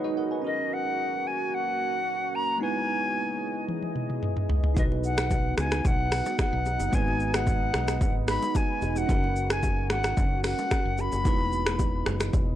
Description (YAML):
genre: afrobeats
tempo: 111 BPM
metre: 4/4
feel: straight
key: unclear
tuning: A4 = 441 Hz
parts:
  - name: bell-like tine electric piano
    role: accompaniment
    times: 0.0-12.6 s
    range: G#3 to G#5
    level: -33 LUFS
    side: right 2 dB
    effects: medium stereo tremolo
  - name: deep dark ambient pad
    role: sustained chords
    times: 0.0-12.6 s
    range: E3 to D#5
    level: -35 LUFS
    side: right 1 dB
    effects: chorus, built-in reverb, sidechain pumping
  - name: silver concert flute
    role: melody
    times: 0.5-12.1 s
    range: D#5 to B5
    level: -30 LUFS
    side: left 2 dB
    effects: analog delay
  - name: afro-pop drum kit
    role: drums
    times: 3.7-12.5 s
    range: finger snaps, hi-hat, kick drum, rim click, shaker, toms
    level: -27 LUFS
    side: equal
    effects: overdrive, vintage 12-bit sampler grit
  - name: fingered electric bass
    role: bass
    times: 4.8-12.6 s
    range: E1 to C#2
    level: -30 LUFS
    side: equal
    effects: none
  - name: congas and bongos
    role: percussion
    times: 4.8-12.5 s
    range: none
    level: -39 LUFS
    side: left 2 dB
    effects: none
room: little or no reverb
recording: dry, gritty hardware recording, cassette tape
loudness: -24 LUFS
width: side -12 dB against mid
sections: 0.0-12.6 A section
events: drum fill 3.7-4.8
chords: 0.4 F#; 2.6 Emaj7; 4.8 B; 6.9 G#m7; 9.1 F#; 11.3 Emaj7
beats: | 0.44 0.98 1.52 2.06 | 2.60 3.14 3.69 4.22 | 4.77 5.31 5.85 6.39 | 6.93 7.47 8.01 8.55 | 9.09 9.63 10.17 10.71 | 11.25 11.79 12.33